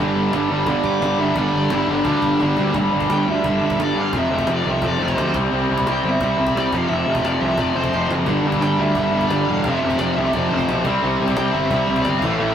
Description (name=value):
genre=punk rock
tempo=174 BPM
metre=4/4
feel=straight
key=unclear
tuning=A4 = 440 Hz
part: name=distorted electric guitar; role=riff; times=0.0-12.5 s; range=F2 to C4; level=-22 LUFS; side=right 4 dB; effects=distortion
part: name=sludgy distorted guitar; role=riff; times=0.0-2.7, 8.3-12.5 s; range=F2 to C4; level=-26 LUFS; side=equal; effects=overdrive
part: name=tight distorted guitar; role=riff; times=0.0-12.5 s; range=F2 to C4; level=-22 LUFS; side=left 3 dB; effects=distortion
part: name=fuzz picked electric bass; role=bass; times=0.0-12.5 s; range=E1 to G2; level=-25 LUFS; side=left 1 dB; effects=overdrive
part: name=cajon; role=drums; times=0.3-12.3 s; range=none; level=-30 LUFS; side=equal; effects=none
part: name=high-gain lead guitar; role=melody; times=0.9-12.5 s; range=D4 to D6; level=-24 LUFS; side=equal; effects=distortion
room=moderate studio reverb, RT60 0.6 s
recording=rough rehearsal-room recording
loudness=-17 LUFS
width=side -9 dB against mid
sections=0.0-2.8 A section; 2.8-12.5 B section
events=drum fill 2.4-2.8, 7.9-8.3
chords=0.0 G5; 4.1 F5; 5.3 C; 6.7 F5; 8.3 G5; 9.6 F5; 10.9 C